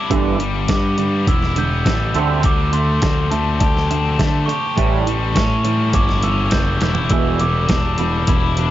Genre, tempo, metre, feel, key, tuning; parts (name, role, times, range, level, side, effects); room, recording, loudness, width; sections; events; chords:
indie rock; 103 BPM; 4/4; straight; A4 = 441 Hz
glockenspiel with rubber mallets; melody; 0.0-8.7 s; A5 to G6; -23 LUFS; right 2 dB
heavy high-gain guitar; riff; 0.0-8.7 s; E2 to G4; -24 LUFS; left 9 dB; distortion
twangy electric guitar; riff; 0.0-8.7 s; E2 to C4; -24 LUFS; right 8 dB; analog chorus
fuzz picked electric bass; bass; 0.1-8.7 s; E1 to D3; -19 LUFS; equal; overdrive
dusty soul sampler-style drum kit; drums; 0.1-8.7 s; hi-hat, kick drum, snare drum, toms; -19 LUFS; equal
little or no reverb; dark, warm production, nothing above 7.6 kHz; -15 LUFS; side -13 dB against mid
0.0-8.7 A section
drum fill 6.8
0.1 G6; 2.2 D7sus4; 4.8 A7; 7.1 Em7